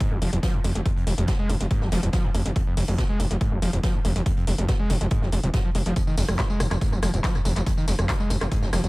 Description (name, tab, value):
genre	driving peak-time techno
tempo	141 BPM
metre	4/4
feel	straight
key	F minor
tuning	A4 = 442 Hz
part	screaming distorted acid line	riff	0.0-8.9 s	Eb2 to Ab3	-27 LUFS	equal	distortion, chorus, sidechain pumping, dub echo
part	electronic kick drum	drums	0.0-8.6 s	none	-25 LUFS	equal	none
part	techno drum kit	drums	0.0-8.9 s	handclaps, hi-hat, rim click, tambourine	-32 LUFS	equal	dub echo
part	vintage brush drum kit	drums	0.0-8.8 s	hi-hat, snare drum	-39 LUFS	right 1 dB	sidechain pumping on hats, high-pass filter on hats, high-pass filter on snare, high-pass filter on room, dub echo
part	gritty driven synth bass	bass	0.1-8.9 s	Eb1 to F1	-25 LUFS	equal	sidechain pumping
room	little or no reverb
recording	echo-heavy mix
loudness	-21 LUFS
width	side -23 dB against mid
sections	0.0-8.9 A section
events	none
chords	0.0 Fm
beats	0.01 0.43 | 0.86 1.28 1.71 2.13 | 2.56 2.98 3.41 3.83 | 4.26 4.69 5.11 5.54 | 5.96 6.39 6.81 7.24 | 7.67 8.09 8.52